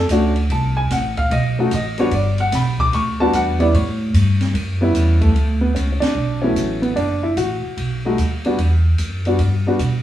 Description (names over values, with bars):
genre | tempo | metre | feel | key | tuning
jazz piano trio | 148 BPM | 4/4 | swing 66% on 8ths | D major | A4 = 438 Hz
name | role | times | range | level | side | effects
warm baby grand piano | melody | 0.0-9.8 s | F#3 to D6 | -19 LUFS | equal | none
upright bass | bass | 0.0-10.0 s | F#1 to B2 | -18 LUFS | equal | none
open jazz drum kit | drums | 0.1-9.9 s | hi-hat, kick drum, ride cymbal, snare drum | -27 LUFS | right 1 dB | none
room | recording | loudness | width
moderate studio reverb, RT60 0.8 s | heard from further back in the room, small room ambience | -16 LUFS | side -12 dB against mid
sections
0.0-5.4 A section; 5.4-10.0 B section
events
grand piano solo 0.0-5.4; band accent 6.0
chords
0.0 Bm7 (rootless); 0.5 Am; 1.3 B7; 2.1 Em7; 3.7 A7; 5.4 D69; 7.0 F#m; 7.8 B(b13); 8.6 Emadd9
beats
0.10 | 0.50 0.91 1.31 1.72 | 2.12 2.52 2.93 3.33 | 3.74 4.14 4.54 4.95 | 5.35 5.76 6.16 6.57 | 6.97 7.38 7.78 8.19 | 8.59 9.00 9.40 9.81